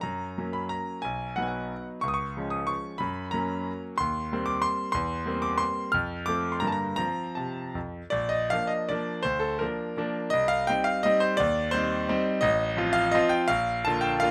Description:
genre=classical, romantic triple-time dance for piano with dotted rhythms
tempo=147-198 BPM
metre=3/4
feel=rubato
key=F# major, Bb major from 4.0 s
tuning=A4 = 440 Hz
part: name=bright concert grand piano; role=solo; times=0.0-14.3 s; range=A1 to F6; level=-28 LUFS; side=equal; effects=none
room=little or no reverb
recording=close, detailed microphones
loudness=-28 LUFS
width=mono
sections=0.0-8.1 A section; 8.1-14.3 B section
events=none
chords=0.0 F#; 1.0 B; 2.0 C#; 3.0 F#; 4.0 Cm7/Eb; 4.9 C7/E; 5.9 F; 6.6 Gm; 7.0 F; 8.1 Bb; 9.2 Bb/D; 10.3 Cm; 11.4 Cm/Eb; 12.4 F7/A; 13.5 Bb

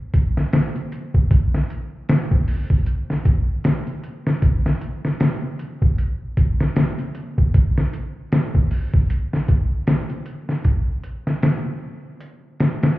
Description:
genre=trip hop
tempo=77 BPM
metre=4/4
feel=swing 58% on 16ths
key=none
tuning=none
part: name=trip hop sampler-style drum kit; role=drums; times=0.1-13.0 s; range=hi-hat, kick drum, snare drum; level=-18 LUFS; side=equal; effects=studio reverb
room=light reverb, digital ambience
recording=heard muffled through a wall, club reverb, EQ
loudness=-18 LUFS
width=side -17 dB against mid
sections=0.0-13.0 A section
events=none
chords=none

